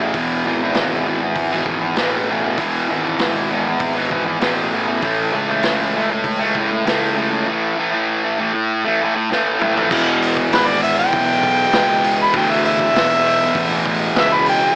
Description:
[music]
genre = garage rock duo or trio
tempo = 98 BPM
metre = 4/4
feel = straight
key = unclear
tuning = A4 = 443 Hz
[part]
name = fuzz guitar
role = riff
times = 0.0-14.8 s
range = E2 to A3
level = -17 LUFS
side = equal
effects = distortion
[part]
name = fuzz picked electric bass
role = bass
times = 0.0-14.7 s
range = E1 to D2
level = -25 LUFS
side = equal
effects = overdrive
[part]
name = vintage drum kit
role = drums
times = 0.1-14.6 s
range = crash cymbal, hi-hat, kick drum, snare drum, toms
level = -23 LUFS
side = equal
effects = none
[part]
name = warm harmonica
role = melody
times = 10.5-14.8 s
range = B4 to B5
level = -16 LUFS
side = equal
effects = overdrive
[sound]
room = light reverb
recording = AM radio sound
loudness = -15 LUFS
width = side -24 dB against mid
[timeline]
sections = 0.0-9.9 A section; 9.9-14.8 B section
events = drum fill 9.3-9.9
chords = 0.0 E; 5.0 A; 9.9 E5

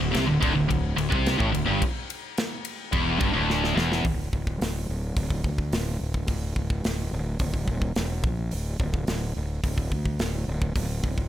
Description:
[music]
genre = heavy metal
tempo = 107 BPM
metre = 4/4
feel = straight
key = unclear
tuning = A4 = 440 Hz
[part]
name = high-gain distorted guitar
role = riff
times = 0.0-4.0 s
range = D2 to C3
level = -24 LUFS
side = equal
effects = distortion
[part]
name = fuzz fingered electric bass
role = bass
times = 0.0-11.3 s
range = D1 to D2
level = -28 LUFS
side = equal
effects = overdrive
[part]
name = modern studio drum kit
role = drums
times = 0.1-11.3 s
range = hi-hat, kick drum, ride cymbal, snare drum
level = -28 LUFS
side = equal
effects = none
[sound]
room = little or no reverb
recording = none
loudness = -24 LUFS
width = side -12 dB against mid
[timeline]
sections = 0.0-4.1 A section; 4.1-11.3 B section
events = drum fill 3.5-4.1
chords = 0.0 D5; 4.1 N.C.

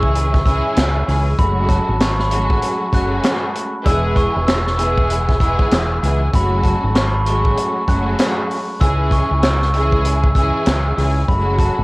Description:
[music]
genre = hip hop, boom-bap hip-hop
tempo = 97 BPM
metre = 4/4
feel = swing 62% on 16ths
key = F# minor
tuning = A4 = 440 Hz
[part]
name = glockenspiel with hard plastic mallets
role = melody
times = 0.0-11.8 s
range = A5 to F#6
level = -21 LUFS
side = equal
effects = high-pass filter, low-pass filter, cassette tape
[part]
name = warm symphonic string section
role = accompaniment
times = 0.0-11.8 s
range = E3 to G#4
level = -21 LUFS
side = equal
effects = cassette tape, high-pass filter, low-pass filter
[part]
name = deep dub fingered electric bass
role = bass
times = 0.0-11.8 s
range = E1 to C#2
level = -19 LUFS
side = equal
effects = tube saturation
[part]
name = vintage drum kit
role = drums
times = 0.0-11.8 s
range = handclaps, hi-hat, kick drum, snare drum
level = -19 LUFS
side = equal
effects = cassette tape
[sound]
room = studio reverb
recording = home recording on cassette, vinyl crackle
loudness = -14 LUFS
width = side -23 dB against mid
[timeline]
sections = 0.0-11.8 A section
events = none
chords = 0.0 C#m; 1.4 F#madd9; 3.9 E; 6.3 F#madd9; 8.8 C#m; 11.3 F#madd9

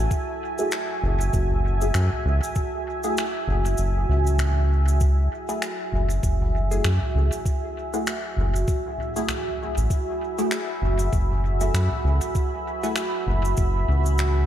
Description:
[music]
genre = ambient dub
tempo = 98 BPM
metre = 4/4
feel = swing 58% on 16ths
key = F# minor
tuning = A4 = 439 Hz
[part]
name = deep dark ambient pad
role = sustained chords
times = 0.0-14.5 s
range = F#4 to B5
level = -28 LUFS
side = right 2 dB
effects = chorus, built-in reverb
[part]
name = round analog bass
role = bass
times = 0.0-14.5 s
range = F#1 to F#2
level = -21 LUFS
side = equal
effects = none
[part]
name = electronic kick drum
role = drums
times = 0.1-13.7 s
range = none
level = -24 LUFS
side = equal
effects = none
[part]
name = soft-mallet drum kit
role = drums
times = 0.1-14.3 s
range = cabasa, finger snaps, toms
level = -31 LUFS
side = left 1 dB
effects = dub echo
[part]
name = filtered dub chord stab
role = stabs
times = 0.6-13.0 s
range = A3 to G#4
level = -31 LUFS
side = left 1 dB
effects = phaser, lush chorus, dub echo
[sound]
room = light reverb, studio reverb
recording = none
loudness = -21 LUFS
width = side -11 dB against mid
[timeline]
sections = 0.0-14.5 A section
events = kick drops out 3.8-5.0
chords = 0.0 F#m9

